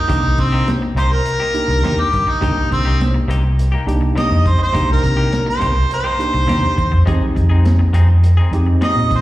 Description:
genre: straight-eighth soul blues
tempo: 103 BPM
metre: 4/4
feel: straight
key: C minor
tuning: A4 = 440 Hz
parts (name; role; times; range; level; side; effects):
- warm harmonica; melody; 0.0-9.2 s; C4 to Eb5; -19 LUFS; equal; overdrive, slapback echo
- tine electric piano; accompaniment; 0.1-9.1 s; Ab3 to G4; -23 LUFS; right 2 dB; medium stereo tremolo, slapback echo
- semi-hollow electric guitar; stabs; 0.1-9.1 s; C3 to Ab4; -26 LUFS; left 4 dB; spring reverb, slapback echo
- vintage muted fingered electric bass; bass; 0.1-9.2 s; C2 to C3; -15 LUFS; equal; none
- crunchy breakbeat drum kit; drums; 0.1-9.2 s; hi-hat, kick drum, snare drum; -22 LUFS; equal; slapback echo
room: little or no reverb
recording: live gig heard through the venue's PA, recital hall reverb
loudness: -13 LUFS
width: side -16 dB against mid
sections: 0.0-9.2 A section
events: none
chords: 0.0 Cm7; 7.1 Fm7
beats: | 0.09 0.67 1.25 1.83 | 2.42 3.00 3.58 4.16 | 4.74 5.33 5.91 6.49 | 7.07 7.65 8.23 8.82

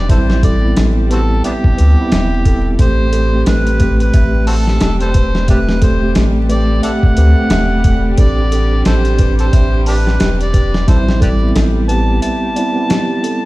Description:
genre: trip hop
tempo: 89 BPM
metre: 4/4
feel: swing 59% on 16ths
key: A minor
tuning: A4 = 440 Hz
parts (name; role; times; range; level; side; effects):
- overdriven harmonica; melody; 0.0-13.5 s; B3 to A5; -21 LUFS; right 1 dB; tape echo
- mellow tine electric piano; accompaniment; 0.0-13.5 s; G3 to A4; -18 LUFS; equal; harmonic tremolo
- muted studio violin section; sustained chords; 0.0-13.5 s; G3 to G4; -29 LUFS; left 1 dB; none
- small celesta; arpeggios; 0.0-13.5 s; G4 to A5; -26 LUFS; right 2 dB; ping-pong delay
- soft dub sub bass; bass; 0.0-12.2 s; E1 to D2; -14 LUFS; equal; none
- dusty soul sampler-style drum kit; drums; 0.1-13.4 s; hi-hat, kick drum, snare drum; -14 LUFS; equal; none
room: small room reverb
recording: played on a big sound system in a bare room, large studio reverb, vinyl crackle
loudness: -11 LUFS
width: side -19 dB against mid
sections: 0.0-13.5 A section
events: break 12.2-13.5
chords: 0.0 Am7; 10.9 Cmaj7/A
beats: | 0.09 0.77 1.44 2.12 | 2.79 3.46 4.14 4.81 | 5.49 6.16 6.83 7.51 | 8.18 8.86 9.53 10.21 | 10.88 11.55 12.23 12.90

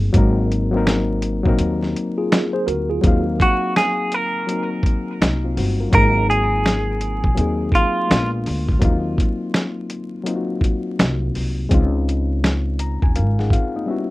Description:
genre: lo-fi hip hop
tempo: 83 BPM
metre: 4/4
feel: swing 64% on 16ths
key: Eb dorian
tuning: A4 = 440 Hz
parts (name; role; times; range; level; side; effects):
- reed electric piano; accompaniment; 0.0-14.1 s; Gb3 to Bb5; -23 LUFS; left 3 dB; overdrive
- upright bass; bass; 0.0-13.5 s; G1 to Eb2; -21 LUFS; equal; none
- dusty soul sampler-style drum kit; drums; 0.1-13.7 s; finger snaps, hi-hat, kick drum, snare drum; -18 LUFS; equal; none
- mellow tine electric piano; second line; 2.2-3.2 s; F4 to C5; -24 LUFS; right 1 dB; medium stereo tremolo, tape echo
- semi-hollow electric guitar; melody; 3.4-8.3 s; F4 to Bb4; -20 LUFS; right 1 dB; tape echo
room: little or no reverb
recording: rough home demo mix, vinyl crackle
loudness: -17 LUFS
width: side -18 dB against mid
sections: 0.0-3.0 A section; 3.0-14.1 B section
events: break 1.6-3.0; reed electric piano fill 12.4-14.1; silent gap 13.9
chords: 0.0 Ab9; 3.0 Ebm69; 5.9 Ab9; 8.1 Bb7b9; 8.8 Ebm69; 11.7 Dbmaj9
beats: | 0.14 0.86 1.59 2.31 | 3.03 3.75 4.48 5.20 | 5.92 6.65 7.37 8.09 | 8.81 9.54 10.26 10.98 | 11.71 12.43 13.15 13.88

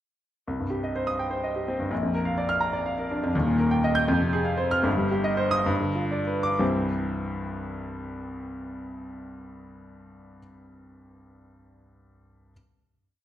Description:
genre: classical, virtuoso piano study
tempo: 64-85 BPM (dotted quarters)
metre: 6/8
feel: rubato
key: unclear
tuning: A4 = 439 Hz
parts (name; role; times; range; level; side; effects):
- clear grand piano; solo; 0.5-12.5 s; Eb1 to G6; -24 LUFS; equal; none
room: moderate recital hall reverb, RT60 1.5 s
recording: recorded in a church or concert hall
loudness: -24 LUFS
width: side -12 dB against mid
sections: 0.5-6.6 A section; 6.6-10.3 final chord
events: slowing down 2.6-6.6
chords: 0.5 Cm; 1.9 Bb; 3.3 Eb; 4.1 Fm; 4.9 Cm/G; 5.7 G7; 6.6 C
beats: | 0.47 1.20 | 1.91 2.63 | 3.34 4.08 | 4.86 5.69 | 6.61 7.51 | 8.44 9.35

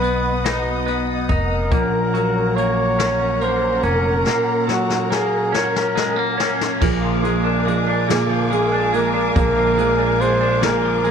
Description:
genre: six-eight pop ballad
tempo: 47 BPM (dotted quarters)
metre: 6/8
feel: straight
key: unclear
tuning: A4 = 440 Hz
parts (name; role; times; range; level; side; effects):
- mellow flugelhorn; melody; 0.0-11.1 s; Gb4 to Db5; -21 LUFS; equal; none
- twelve-string electric guitar; accompaniment; 0.0-11.1 s; Bb2 to D#4; -21 LUFS; equal; double-tracked left and right
- warm studio string section; sustained chords; 0.0-11.1 s; B3 to D#6; -26 LUFS; equal; none
- upright bass; bass; 0.0-11.1 s; F1 to B1; -24 LUFS; equal; none
- jazz brush drum kit; drums; 0.0-11.1 s; crash cymbal, hi-hat, kick drum, snare drum; -24 LUFS; left 3 dB; none
- fingerpicked steel-string acoustic guitar; arpeggios; 6.8-11.1 s; Bb2 to Ab4; -24 LUFS; right 10 dB; none
room: light reverb, small room reverb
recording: 1960s-style stereo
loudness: -16 LUFS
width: side -7 dB against mid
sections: 0.0-6.8 A section; 6.8-11.1 B section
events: drum fill 4.3-6.8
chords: 0.0 B; 1.7 Gb; 6.8 Bb7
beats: 0.45 | 1.72 2.98 | 4.26 5.53 | 6.81 8.09 | 9.36 10.62

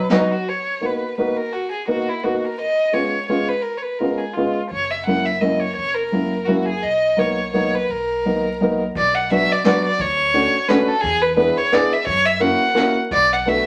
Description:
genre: musette waltz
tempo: 171 BPM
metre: 3/4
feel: swing 55% on 8ths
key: B major, B minor from 9.0 s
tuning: A4 = 442 Hz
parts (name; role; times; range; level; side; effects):
- rich violin; melody; 0.0-13.7 s; D#4 to F#5; -22 LUFS; equal; none
- warm upright piano; accompaniment; 0.1-13.7 s; F#3 to G#4; -22 LUFS; equal; none
- vintage brush drum kit; drums; 0.1-0.2, 9.0-13.6 s; hi-hat, kick drum, snare drum; -31 LUFS; equal; none
- upright bass; bass; 4.7-13.6 s; F#1 to F#2; -36 LUFS; equal; none
room: wet studio reverb, RT60 0.6 s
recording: vinyl crackle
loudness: -19 LUFS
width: mono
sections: 0.5-9.0 A section; 9.0-13.7 B section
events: none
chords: 0.5 Bmaj7; 2.6 C#7; 4.7 F#7; 6.8 Bmaj7; 9.0 Bm; 10.0 Dmaj7; 11.0 E7; 12.1 F#7; 13.1 Bm7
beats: 0.11 | 0.47 0.82 1.18 | 1.53 1.88 2.23 | 2.58 2.93 3.28 | 3.64 3.99 4.35 | 4.71 5.07 5.42 | 5.78 6.12 6.47 | 6.83 7.18 7.53 | 7.89 8.25 8.61 | 8.96 9.31 9.66 | 10.01 10.35 10.69 | 11.04 11.38 11.72 | 12.07 12.42 12.77 | 13.12 13.47

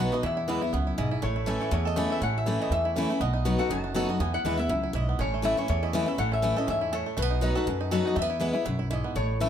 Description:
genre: bluegrass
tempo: 242 BPM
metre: 4/4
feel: swing 55% on 8ths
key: E major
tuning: A4 = 440 Hz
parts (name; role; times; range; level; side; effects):
- bluegrass banjo; melody; 0.0-9.2 s; E3 to A4; -34 LUFS; right 7 dB; none
- lap resonator guitar; melody; 0.0-9.5 s; B4 to A5; -31 LUFS; left 2 dB; none
- picked steel-string acoustic guitar; accompaniment; 0.0-9.5 s; E2 to F#4; -28 LUFS; left 2 dB; none
- upright bass; bass; 0.0-9.5 s; F#1 to F#2; -30 LUFS; right 1 dB; none
room: moderate large studio reverb, RT60 1.0 s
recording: none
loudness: -25 LUFS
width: side -9 dB against mid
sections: 0.0-1.2 A section; 1.2-9.2 B section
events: none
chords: 0.2 E; 1.2 A; 3.2 B; 4.2 E; 5.2 A; 7.2 B; 8.2 E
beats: | 0.24 0.48 0.73 0.98 | 1.23 1.48 1.72 1.97 | 2.22 2.47 2.71 2.96 | 3.21 3.46 3.71 3.95 | 4.20 4.45 4.70 4.94 | 5.19 5.44 5.69 5.93 | 6.18 6.43 6.68 6.92 | 7.17 7.42 7.67 7.92 | 8.16 8.41 8.66 8.91 | 9.16 9.40

